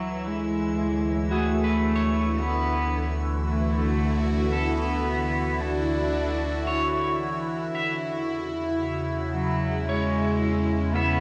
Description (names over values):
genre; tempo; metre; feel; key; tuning
ambient; 56 BPM; 4/4; straight; unclear; A4 = 440 Hz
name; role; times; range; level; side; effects
rich cello; melody; 0.0-11.2 s; F#3 to D4; -30 LUFS; equal; tape echo
evolving wavetable pad; sustained chords; 0.0-11.2 s; C#3 to C#5; -30 LUFS; equal; phaser, built-in reverb, cassette tape
electric guitar at the edge of break-up; arpeggios; 0.0-11.2 s; F#4 to E5; -34 LUFS; equal; harmonic tremolo, cassette tape, tape echo
round analog bass; bass; 0.0-11.2 s; D2 to E2; -32 LUFS; equal; none
drifting glass-harmonics texture; texture; 0.0-11.2 s; E5 to E6; -43 LUFS; equal; chorus, built-in reverb, cassette tape
room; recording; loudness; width
wet spring reverb, RT60 1.0 s; home recording on cassette; -26 LUFS; mono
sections
0.0-11.2 A section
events
fade-in on synth texture 0.0-11.2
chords
0.0 D6; 7.7 C#m/E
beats
0.24 1.32 2.39 | 3.46 4.53 5.60 6.67 | 7.75 8.82 9.89 10.96